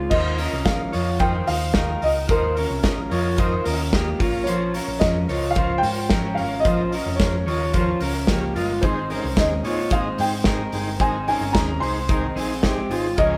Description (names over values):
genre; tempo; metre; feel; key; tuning
jangly indie pop; 110 BPM; 4/4; straight; Eb mixolydian; A4 = 440 Hz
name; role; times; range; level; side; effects
picked steel-string acoustic guitar; accompaniment; 0.0-13.4 s; Ab2 to Bb4; -33 LUFS; equal; none
electric guitar at the edge of break-up; arpeggios; 0.0-13.4 s; Ab3 to Db5; -29 LUFS; equal; none
hollow-body short-scale picked electric bass; bass; 0.0-13.4 s; F1 to Bb2; -30 LUFS; equal; none
dark upright piano; melody; 0.1-13.4 s; Bb4 to C6; -28 LUFS; equal; none
combo organ; accompaniment; 0.1-13.3 s; Eb4 to Eb5; -34 LUFS; equal; none
loose indie drum kit; drums; 0.1-13.3 s; crash cymbal, hi-hat, kick drum, snare drum; -26 LUFS; equal; none
room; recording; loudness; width
moderate stone room reverb, RT60 1.4 s; band playing live in one room; -22 LUFS; mono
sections
0.1-13.4 A section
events
none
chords
0.1 Ebsus2; 4.2 Bbm; 8.8 Ab